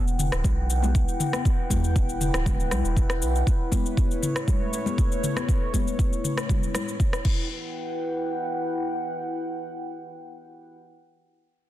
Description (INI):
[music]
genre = afro house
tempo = 119 BPM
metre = 4/4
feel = straight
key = E dorian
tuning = A4 = 439 Hz
[part]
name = dark analog pad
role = sustained chords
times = 0.1-10.8 s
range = A3 to G5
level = -30 LUFS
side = equal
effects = chorus, phaser, vintage 12-bit sampler grit, sidechain pumping
[part]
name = round analog bass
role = bass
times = 0.0-3.4 s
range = D1 to E2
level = -26 LUFS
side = equal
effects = sidechain pumping
[part]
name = afro-pop drum kit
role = drums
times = 0.1-7.4 s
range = crash cymbal, rim click, shaker, toms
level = -30 LUFS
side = left 2 dB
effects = none
[part]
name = electronic kick drum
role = drums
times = 0.4-7.4 s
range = none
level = -23 LUFS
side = equal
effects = none
[part]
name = congas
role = percussion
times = 0.4-6.8 s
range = none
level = -32 LUFS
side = left 6 dB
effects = none
[sound]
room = little or no reverb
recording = dense, heavily limited modern master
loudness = -23 LUFS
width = side -13 dB against mid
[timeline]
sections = 0.0-7.5 A section; 7.5-11.5 B section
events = none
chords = 0.0 Em7; 3.5 Aadd9; 7.2 Em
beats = 0.44 0.95 | 1.45 1.96 2.46 2.96 | 3.47 3.97 4.48 4.98 | 5.49 5.99 6.49 7.00 | 7.50 8.01 8.51 9.01 | 9.52 10.02 10.53